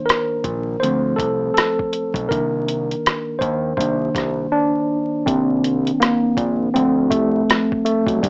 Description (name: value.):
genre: lo-fi hip hop.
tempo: 81 BPM.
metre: 4/4.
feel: swing 55% on 16ths.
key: C dorian.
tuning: A4 = 441 Hz.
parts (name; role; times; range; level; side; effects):
mellow tine electric piano; accompaniment; 0.0-8.3 s; Eb3 to C5; -18 LUFS; equal; medium stereo tremolo, cassette tape.
lo-fi sampler-style drum kit; drums; 0.1-8.3 s; hi-hat, kick drum, rim click; -20 LUFS; equal; none.
fat analog bass; bass; 0.4-8.3 s; Bb1 to Eb2; -25 LUFS; equal; none.
room: moderate studio ambience, RT60 0.5 s.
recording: worn, warbling old tape, cassette tape, vinyl crackle, warbly pitch drift, small speaker sound.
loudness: -17 LUFS.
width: side -39 dB against mid.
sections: 0.0-5.3 A section; 5.3-8.3 A section.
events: tine electric piano solo 0.0-5.3, 5.3-8.3; drums muted 4.5-5.3.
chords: 0.0 Cm7; 0.8 Dm7; 2.3 Cm7; 6.7 Dm7.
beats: 0.08 0.82 1.56 | 2.30 3.04 3.79 4.53 | 5.27 6.01 6.75 7.49 | 8.23.